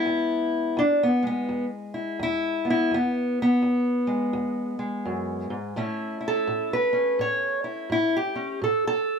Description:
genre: acoustic country blues, solo or duo.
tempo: 84 BPM.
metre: 4/4.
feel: swing 62% on 8ths.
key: E major.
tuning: A4 = 437 Hz.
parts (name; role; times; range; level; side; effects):
fingerpicked steel-string acoustic guitar; solo; 0.0-9.2 s; E2 to C#5; -23 LUFS; equal; none.
room: moderate studio reverb, RT60 0.8 s.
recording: none.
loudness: -23 LUFS.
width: side -6 dB against mid.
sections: 0.0-9.2 A section.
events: steel-string acoustic guitar solo 0.0-9.2.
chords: 0.0 E; 5.8 A.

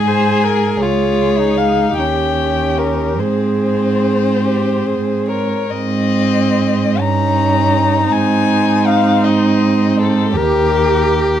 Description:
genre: classical, slow romantic movement for string quartet.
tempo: 46-55 BPM (dotted quarters).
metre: 6/8.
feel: rubato.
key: Ab major.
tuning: A4 = 441 Hz.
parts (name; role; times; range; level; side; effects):
dark violin; melody; 0.0-11.4 s; A4 to Bb5; -18 LUFS; left 8 dB; none.
rich violin; second line; 0.0-11.4 s; C4 to Ab4; -19 LUFS; equal; none.
rich viola; accompaniment; 0.0-11.4 s; Eb4 to C5; -20 LUFS; right 4 dB; none.
clear cello; bass; 0.0-11.4 s; Db2 to Ab2; -17 LUFS; right 4 dB; none.
room: light reverb.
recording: dark, warm production.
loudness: -12 LUFS.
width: side -10 dB against mid.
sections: 0.0-5.7 A section; 5.7-11.4 B section.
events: none.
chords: 0.0 Abadd9; 0.8 Db; 2.0 Eb7; 3.2 Ab; 7.0 Eb7/G; 8.1 Ab; 10.4 Eb.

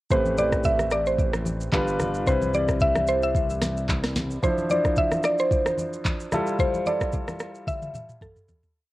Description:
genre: amapiano.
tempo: 111 BPM.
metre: 4/4.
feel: swing 55% on 16ths.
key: unclear.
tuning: A4 = 444 Hz.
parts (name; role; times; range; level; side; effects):
mallet-like synth pluck; melody; 0.1-8.6 s; A4 to E5; -24 LUFS; equal; chorus, cassette tape, tape echo.
warm concert grand piano; accompaniment; 0.1-8.8 s; F3 to D5; -29 LUFS; equal; none.
fat analog bass; bass; 0.1-4.4 s; G1 to C2; -30 LUFS; equal; none.
smooth R&B drum kit; drums; 0.1-8.7 s; handclaps, kick drum, rim click, shaker, snare drum, toms; -27 LUFS; equal; cassette tape.
congas; percussion; 0.1-8.6 s; none; -34 LUFS; left 1 dB; none.
room: light reverb.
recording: home recording on cassette.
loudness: -22 LUFS.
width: side -17 dB against mid.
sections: 0.1-8.8 groove.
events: fade-out 6.6-8.8; drum fill 7.7-8.8.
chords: 0.1 Am9; 1.7 G7; 2.3 Cmaj7; 4.4 Dm9; 6.3 Fmaj9.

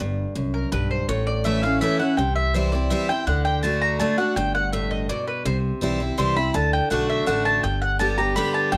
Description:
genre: bluegrass.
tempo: 165 BPM.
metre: 3/4.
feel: straight.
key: G major.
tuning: A4 = 439 Hz.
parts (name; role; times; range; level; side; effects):
picked steel-string acoustic guitar; accompaniment; 0.0-8.8 s; F#2 to G4; -26 LUFS; equal; none.
upright bass; bass; 0.0-8.8 s; G1 to D2; -28 LUFS; equal; none.
mandolin; stabs; 0.5-8.8 s; Bb4 to C6; -27 LUFS; equal; none.
room: light reverb.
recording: none.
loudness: -23 LUFS.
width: mono.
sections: 0.0-8.7 A section.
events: mandolin solo 0.0-8.8.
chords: 0.0 G; 1.1 A; 2.2 C; 3.3 D; 4.4 G; 5.5 C; 6.5 D; 7.6 G.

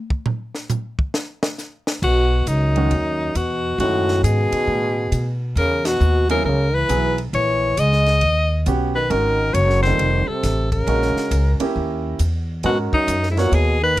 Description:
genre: jazz, small-group swing and bop.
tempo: 136 BPM.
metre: 4/4.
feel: swing 65% on 8ths.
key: G# minor.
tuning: A4 = 440 Hz.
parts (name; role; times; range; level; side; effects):
compact cocktail drum kit; drums; 0.1-14.0 s; crash cymbal, hi-hat, kick drum, ride cymbal, snare drum, toms; -27 LUFS; right 1 dB; none.
bright alto saxophone; melody; 2.0-14.0 s; D#4 to D#5; -20 LUFS; left 2 dB; none.
growling trombone; second line; 2.0-14.0 s; F#2 to G#3; -25 LUFS; right 2 dB; none.
upright bass; bass; 2.0-14.0 s; F1 to B2; -20 LUFS; equal; none.
warm concert grand piano; accompaniment; 2.8-13.5 s; D#3 to C#5; -25 LUFS; right 4 dB; none.
room: little or no reverb.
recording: close, detailed microphones.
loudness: -17 LUFS.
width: side -16 dB against mid.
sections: 0.0-2.0 A section; 2.0-14.0 B section.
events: drum solo 0.0-2.0; band accent 5.8.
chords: 0.0 N.C.; 2.0 G#m7 (rootless); 3.8 B9; 5.6 E69; 7.3 A#m7b5; 8.2 D#7alt; 9.1 G#sus2; 10.0 F; 10.9 A#m7b5; 11.8 D#7b9; 12.6 G#m7.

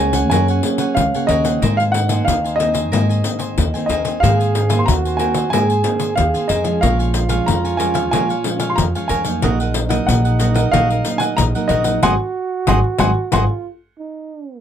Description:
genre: samba and choro.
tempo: 92 BPM.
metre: 4/4.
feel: straight.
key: unclear.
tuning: A4 = 440 Hz.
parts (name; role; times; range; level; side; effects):
warm baby grand piano; melody; 0.0-13.4 s; Eb5 to C6; -20 LUFS; equal; none.
breathy trombone; second line; 0.0-14.6 s; Db4 to Ab4; -24 LUFS; right 5 dB; none.
cavaquinho; accompaniment; 0.0-13.4 s; Gb4 to Ab5; -27 LUFS; right 3 dB; none.
nylon-string guitar; accompaniment; 0.0-13.4 s; F2 to Ab4; -23 LUFS; equal; none.
upright bass; bass; 0.0-13.5 s; Ab1 to Ab2; -19 LUFS; equal; none.
pandeiro; percussion; 0.1-13.5 s; none; -23 LUFS; left 7 dB; none.
room: moderate booth ambience, RT60 0.2 s.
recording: none.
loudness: -15 LUFS.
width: side -9 dB against mid.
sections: 0.0-14.6 A section.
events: band accent 12.0-14.6.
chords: 0.0 Gbadd9; 1.6 Abadd9; 6.8 Bbm7; 9.4 Ebm/Bb; 12.0 Ab7.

